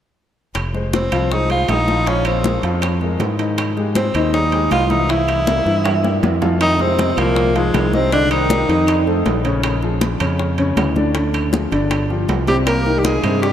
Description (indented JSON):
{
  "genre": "Afro-Cuban jazz",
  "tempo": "158 BPM",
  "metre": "4/4",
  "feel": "straight",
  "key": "F minor",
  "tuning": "A4 = 442 Hz",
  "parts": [
    { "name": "modern bright fingered electric bass", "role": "bass", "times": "0.6-13.5 s", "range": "F1 to Ab2", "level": "-20 LUFS", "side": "equal", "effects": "none" },
    { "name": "bongos", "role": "percussion", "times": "0.6-13.5 s", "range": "none", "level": "-27 LUFS", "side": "left 5 dB", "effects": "none" },
    { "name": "claves", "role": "percussion", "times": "0.6-13.4 s", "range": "none", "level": "-34 LUFS", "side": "right 3 dB", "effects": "none" },
    { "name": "congas", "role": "percussion", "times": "0.6-13.5 s", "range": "none", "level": "-26 LUFS", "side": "left 1 dB", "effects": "none" },
    { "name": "timbales", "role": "percussion", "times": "0.6-13.4 s", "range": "none", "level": "-27 LUFS", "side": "right 6 dB", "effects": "none" },
    { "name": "warm grand piano", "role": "accompaniment", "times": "0.7-13.5 s", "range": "C3 to F5", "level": "-21 LUFS", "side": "left 2 dB", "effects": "none" },
    { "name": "bright tenor saxophone", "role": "melody", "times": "0.9-9.0, 12.5-13.5 s", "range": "Ab3 to Bb4", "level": "-20 LUFS", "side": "equal", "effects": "none" },
    { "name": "trombone with bucket mute", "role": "second line", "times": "6.6-9.0, 12.5-13.5 s", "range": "Ab2 to Bb3", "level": "-24 LUFS", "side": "right 2 dB", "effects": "none" }
  ],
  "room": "wet cathedral reverb, RT60 5.4 s",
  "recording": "in a vast, echoing space",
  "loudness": "-15 LUFS",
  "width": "side -10 dB against mid",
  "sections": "0.6-6.6 A section; 6.6-13.5 B section",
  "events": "drum fill 5.5-6.6",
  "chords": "0.6 Fm7; 2.1 Bbsus2; 3.6 Abmaj7; 5.1 C7; 6.6 Fm7; 8.1 Cm7; 8.9 F7; 9.6 Bbm7; 11.1 Ddim; 11.9 G5; 12.7 Cm7"
}